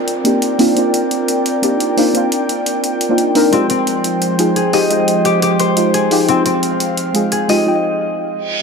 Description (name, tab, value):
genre	liquid drum and bass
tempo	174 BPM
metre	4/4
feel	straight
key	unclear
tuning	A4 = 441 Hz
part	deep mellow chord stab	accompaniment	0.0-8.6 s	Ab3 to G5	-16 LUFS	left 1 dB	chorus, ping-pong delay
part	airy breathy pad	sustained chords	0.0-7.7 s	F3 to G5	-18 LUFS	right 1 dB	chorus
part	concert harp	arpeggios	0.0-0.5, 3.5-8.6 s	C4 to Eb5	-18 LUFS	left 3 dB	tape echo
part	downlifter and reverse cymbal	sound effects	0.0-0.8, 8.4-8.6 s	none	-27 LUFS	right 4 dB	none
part	electronic hi-hat	drums	0.1-7.6 s	none	-22 LUFS	equal	none
room	moderate huge ambient reverb, RT60 4.3 s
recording	none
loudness	-13 LUFS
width	side -5 dB against mid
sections	0.0-8.6 A section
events	filter sweep on analog synth pad 0.0-8.6; break 7.7-8.6; reverse cymbal 8.4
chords	0.0 Cm11; 3.5 Fm9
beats	0.08 0.42 | 0.77 1.11 1.46 1.80 | 2.15 2.49 2.84 3.18 | 3.53 3.87 4.22 4.56 | 4.91 5.25 5.60 5.94 | 6.29 6.63 6.98 7.32 | 7.67 8.01 8.36